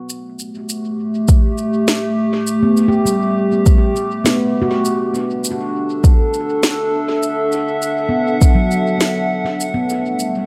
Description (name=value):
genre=ambient dub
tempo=101 BPM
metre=4/4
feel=swing 60% on 16ths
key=unclear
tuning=A4 = 439 Hz
part: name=handpan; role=arpeggios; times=0.0-10.5 s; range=F#3 to G4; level=-23 LUFS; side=equal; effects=tape echo
part: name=warbly tape-like pad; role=sustained chords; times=0.6-10.5 s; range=G3 to F#5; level=-20 LUFS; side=equal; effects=chorus, built-in reverb
part: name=electronic shaker and snare drum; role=drums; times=0.1-10.3 s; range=none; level=-23 LUFS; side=equal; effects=dub echo
part: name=electronic kick drum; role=drums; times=1.3-8.6 s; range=none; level=-13 LUFS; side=equal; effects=overdrive
room=moderate echo chamber reverb, RT60 1.8 s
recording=echo-heavy mix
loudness=-16 LUFS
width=mono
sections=0.1-10.5 A section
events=none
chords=0.1 Asus2; 4.9 D69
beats=| 0.10 0.69 1.29 1.88 | 2.48 3.07 3.67 4.26 | 4.85 5.45 6.04 6.63 | 7.23 7.82 8.42 9.01 | 9.61 10.20